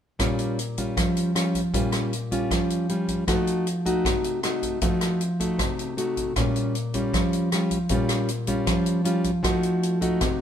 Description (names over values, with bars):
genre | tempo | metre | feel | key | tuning
bossa nova | 156 BPM | 4/4 | straight | Bb dorian | A4 = 440 Hz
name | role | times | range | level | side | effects
nylon-string guitar | accompaniment | 0.2-10.4 s | Bb2 to Gb4 | -23 LUFS | equal | none
swinging big-band drum kit | drums | 0.2-10.3 s | hi-hat, kick drum, rim click | -28 LUFS | equal | none
room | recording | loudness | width
moderate stone room reverb, RT60 1.3 s | band playing live in one room | -22 LUFS | side -9 dB against mid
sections
0.2-10.4 A section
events
none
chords
0.2 Bbm6; 3.3 F7b9; 6.4 Bbm6; 9.4 F7b9